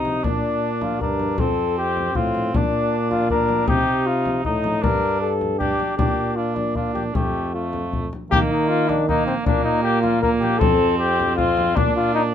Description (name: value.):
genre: classical, renaissance-style consort dance.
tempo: 156 BPM.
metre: 3/4.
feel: straight.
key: F mixolydian.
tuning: A4 = 439 Hz.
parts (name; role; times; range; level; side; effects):
dark cornet; melody; 0.0-12.2 s; C4 to Bb4; -22 LUFS; left 4 dB; none.
warm cor anglais; second line; 0.0-12.3 s; A3 to Eb4; -26 LUFS; right 5 dB; none.
warm trombone; bass; 0.0-12.3 s; F2 to Eb3; -24 LUFS; right 1 dB; none.
frame drum; percussion; 0.1-11.9 s; none; -25 LUFS; left 2 dB; none.
room: light reverb.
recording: none.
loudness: -18 LUFS.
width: side -9 dB against mid.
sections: 0.0-8.3 A section; 8.3-12.3 A section.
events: none.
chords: 0.2 Bb; 1.4 F; 2.5 Bb; 3.7 Cm; 4.8 Gm; 6.0 Bb; 7.1 F; 8.3 Eb5; 9.5 Bb5; 10.6 F; 11.8 Bb.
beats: | 0.24 0.62 1.01 | 1.39 1.77 2.15 | 2.54 2.92 3.30 | 3.68 4.06 4.44 | 4.83 5.21 5.59 | 5.98 6.36 6.75 | 7.14 7.53 7.92 | 8.31 8.69 9.07 | 9.46 9.84 10.23 | 10.61 10.99 11.38 | 11.76 12.14.